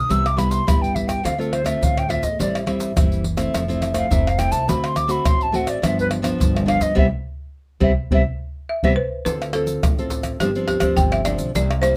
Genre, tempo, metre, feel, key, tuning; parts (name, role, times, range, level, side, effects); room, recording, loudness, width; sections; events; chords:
samba and choro; 105 BPM; 4/4; straight; C major; A4 = 441 Hz
hollow concert flute; second line; 0.0-8.9 s; A4 to E6; -25 LUFS; equal
nylon-string guitar; accompaniment; 0.0-12.0 s; G2 to A4; -26 LUFS; equal
upright bass; bass; 0.0-12.0 s; F1 to G2; -27 LUFS; equal
tube shaker, surdo, pandeiro and tamborim; percussion; 0.1-12.0 s; -25 LUFS; equal
folk marimba with medium hard mallets; melody; 8.7-12.0 s; G4 to G5; -25 LUFS; equal
light reverb; close, detailed microphones; -20 LUFS; mono
0.0-9.3 A section; 9.3-12.0 B section
flute solo 0.0-9.3; band accent 7.0-9.3
0.1 Cmaj7; 1.2 Dm7; 2.4 Am7; 3.5 Fmaj7; 4.7 D7; 5.8 G7; 7.0 Cmaj7; 9.3 Dm7; 10.4 G7sus4